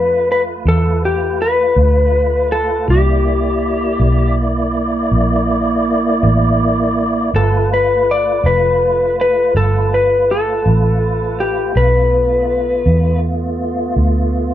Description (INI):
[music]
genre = slow blues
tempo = 54 BPM (dotted quarters)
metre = 12/8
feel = straight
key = G mixolydian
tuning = A4 = 440 Hz
[part]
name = electric slide guitar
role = melody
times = 0.0-13.2 s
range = G4 to D5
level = -15 LUFS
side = left 2 dB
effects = none
[part]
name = tonewheel organ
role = sustained chords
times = 0.0-14.5 s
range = A3 to D5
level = -19 LUFS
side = right 2 dB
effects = slow rotary speaker, chorus vibrato
[part]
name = vintage muted fingered electric bass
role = bass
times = 0.0-14.5 s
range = F1 to F2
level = -16 LUFS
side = equal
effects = none
[sound]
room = light reverb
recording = band playing live in one room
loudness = -12 LUFS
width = side -11 dB against mid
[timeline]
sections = 0.0-14.5 A section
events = none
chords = 0.0 G9 (rootless); 2.9 C9; 7.3 G9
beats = 0.67 1.78 | 2.90 4.01 5.12 6.23 | 7.34 8.45 9.55 10.66 | 11.76 12.86 13.96